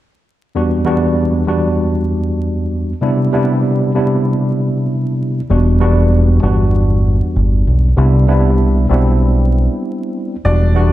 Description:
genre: hip hop, boom-bap hip-hop.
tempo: 97 BPM.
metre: 4/4.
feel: swing 59% on 16ths.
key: E minor.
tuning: A4 = 440 Hz.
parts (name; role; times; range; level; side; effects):
tine electric piano; accompaniment; 0.5-10.9 s; E2 to F#4; -14 LUFS; equal; overdrive, fast stereo tremolo, cassette tape.
deep dub fingered electric bass; bass; 5.5-10.9 s; E1 to C2; -12 LUFS; equal; none.
warm upright piano; melody; 10.4-10.9 s; D4 to D5; -19 LUFS; left 1 dB; none.
room: moderate echo chamber reverb, RT60 2.2 s.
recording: dark, warm production, vinyl crackle.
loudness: -12 LUFS.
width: side -14 dB against mid.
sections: 0.6-10.4 A section.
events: none.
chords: 0.6 Em7; 3.0 Cmaj7; 5.5 Em7; 8.0 Cmaj7.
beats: | 0.55 1.17 1.79 2.41 | 3.03 3.65 4.26 4.88 | 5.50 6.12 6.74 7.36 | 7.97 8.59 9.21 9.83 | 10.45.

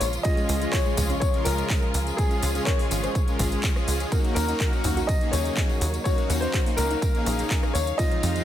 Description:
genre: progressive house.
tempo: 124 BPM.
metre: 4/4.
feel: straight.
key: unclear.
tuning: A4 = 439 Hz.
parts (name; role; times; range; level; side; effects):
bright concert grand piano; melody; 0.0-8.4 s; Ab4 to Eb5; -30 LUFS; left 3 dB; digital delay.
warm studio string section; sustained chords; 0.0-8.4 s; C3 to F5; -34 LUFS; equal; sidechain pumping.
soft round pluck; arpeggios; 0.0-8.4 s; F3 to C5; -34 LUFS; equal; wide subtle chorus, sidechain pumping, digital delay.
tight sequencer bass; bass; 0.0-8.4 s; Ab1 to F2; -26 LUFS; equal; sidechain pumping.
house drum kit; drums; 0.0-8.4 s; handclaps, hi-hat, rim click; -33 LUFS; equal; overdrive.
tambourine; percussion; 0.0-8.4 s; none; -36 LUFS; left 2 dB; none.
soft supersaw; stabs; 0.2-8.4 s; Ab3 to Bb4; -30 LUFS; left 1 dB; sidechain pumping, digital delay.
electronic kick drum; drums; 0.2-8.1 s; none; -24 LUFS; equal; none.
room: little or no reverb.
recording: none.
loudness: -22 LUFS.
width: side -11 dB against mid.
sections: 0.0-8.4 A section.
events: none.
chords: 0.2 Db; 4.1 Ebm7.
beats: | 0.25 0.73 1.22 1.70 | 2.18 2.67 3.15 3.64 | 4.12 4.60 5.09 5.57 | 6.05 6.54 7.02 7.51 | 7.99.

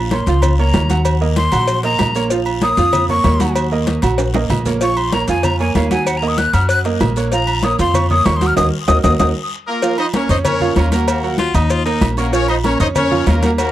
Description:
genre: latin, salsa.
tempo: 192 BPM.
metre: 4/4.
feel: straight.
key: Bb minor.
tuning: A4 = 440 Hz.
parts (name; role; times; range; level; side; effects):
bright upright piano; accompaniment; 0.0-13.7 s; F3 to Eb6; -20 LUFS; right 6 dB; none.
upright bass; bass; 0.0-13.7 s; Bb1 to Gb2; -18 LUFS; left 1 dB; none.
breathy bright jazz flute; melody; 0.1-9.3 s; F5 to Gb6; -19 LUFS; left 2 dB; tape echo.
congas; percussion; 0.1-13.7 s; none; -23 LUFS; left 3 dB; none.
cowbell; percussion; 0.1-13.7 s; none; -25 LUFS; left 6 dB; none.
guiro; percussion; 0.1-13.7 s; none; -34 LUFS; left 11 dB; none.
maracas; percussion; 0.1-13.7 s; none; -34 LUFS; right 7 dB; none.
timbales and agogo bells; percussion; 0.1-13.7 s; none; -25 LUFS; right 5 dB; none.
clear horn section; melody; 9.7-13.7 s; Bb3 to Eb5; -18 LUFS; left 2 dB; none.
edgy baritone saxophone; second line; 11.4-12.1 s; Eb4 to F4; -20 LUFS; left 6 dB; none.
room: little or no reverb.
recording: dry, close 1970s-style studio recording.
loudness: -13 LUFS.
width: side -13 dB against mid.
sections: 0.0-9.8 A section; 9.8-13.7 B section.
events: flute solo 0.0-9.8; drum fill 4.2-4.8, 9.0-9.8; band accent 8.6-9.8.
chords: 0.0 Bbm; 1.1 Ebm; 2.3 Bbm; 3.6 Ebm; 4.8 Bbm; 6.1 Ebm; 7.3 Bbm; 8.6 Ebm; 9.8 Bbm; 11.1 Ebm; 12.3 Bbm.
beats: 0.11 0.42 0.74 | 1.05 1.36 1.68 1.99 | 2.31 2.62 2.93 3.25 | 3.56 3.87 4.18 4.50 | 4.81 5.12 5.44 5.75 | 6.07 6.38 6.69 7.00 | 7.32 7.63 7.94 8.26 | 8.57 8.88 9.20 9.51 | 9.82 10.13 10.45 10.76 | 11.07 11.39 11.70 12.02 | 12.33 12.64 12.96 13.27 | 13.58.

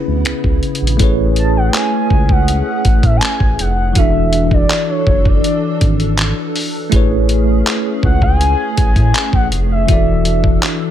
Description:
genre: contemporary R&B.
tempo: 81 BPM.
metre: 4/4.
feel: straight.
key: unclear.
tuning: A4 = 441 Hz.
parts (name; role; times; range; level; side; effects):
bell-like tine electric piano; accompaniment; 0.0-10.9 s; C#3 to D5; -19 LUFS; equal; medium stereo tremolo.
hollow soft pad; sustained chords; 0.0-10.9 s; C#3 to A4; -23 LUFS; equal; ensemble chorus.
smooth synth bass; bass; 0.1-10.6 s; E1 to A2; -16 LUFS; equal; none.
dusty soul sampler-style drum kit; drums; 0.3-10.8 s; finger snaps, handclaps, hi-hat, kick drum; -15 LUFS; equal; none.
gliding portamento lead; melody; 1.4-10.6 s; C#5 to A5; -20 LUFS; equal; chorus, tape echo.
room: little or no reverb.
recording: none.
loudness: -12 LUFS.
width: side -11 dB against mid.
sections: 1.0-10.9 A section.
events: none.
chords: 0.0 C#m7; 1.0 Amaj9; 4.0 E7sus4; 6.9 Amaj9; 9.9 E7sus4.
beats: 0.26 | 1.00 1.74 2.48 3.22 | 3.96 4.70 5.44 6.18 | 6.92 7.66 8.40 9.14 | 9.88 10.63.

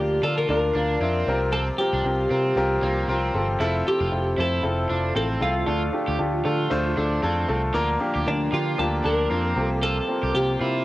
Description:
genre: pop.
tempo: 116 BPM.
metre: 4/4.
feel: swing 56% on 16ths.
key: unclear.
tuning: A4 = 441 Hz.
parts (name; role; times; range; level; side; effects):
twelve-string electric guitar; melody; 0.0-10.8 s; D4 to Bb4; -26 LUFS; equal; cassette tape.
warm grand piano; accompaniment; 0.0-10.8 s; C3 to F5; -25 LUFS; left 1 dB; cassette tape.
clear studio string section; sustained chords; 0.0-10.8 s; A2 to F4; -35 LUFS; equal; cassette tape.
picked electric bass; bass; 0.0-10.8 s; F1 to D3; -27 LUFS; equal; none.
crunchy overdriven guitar; riff; 0.2-10.8 s; Bb3 to G4; -32 LUFS; right 3 dB; cassette tape.
room: moderate spring reverb, RT60 1.4 s, small room ambience.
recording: home recording on cassette.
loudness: -21 LUFS.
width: side -17 dB against mid.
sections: 0.0-10.8 A section.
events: none.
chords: 0.0 Bb/D; 1.3 C7sus4; 3.6 Fmaj7; 5.7 Dm; 7.7 Bb/D; 9.6 C7sus4.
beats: 0.49 1.01 | 1.53 2.05 2.56 3.08 | 3.60 4.12 4.64 5.16 | 5.67 6.19 6.71 7.23 | 7.75 8.27 8.79 9.30 | 9.82 10.34.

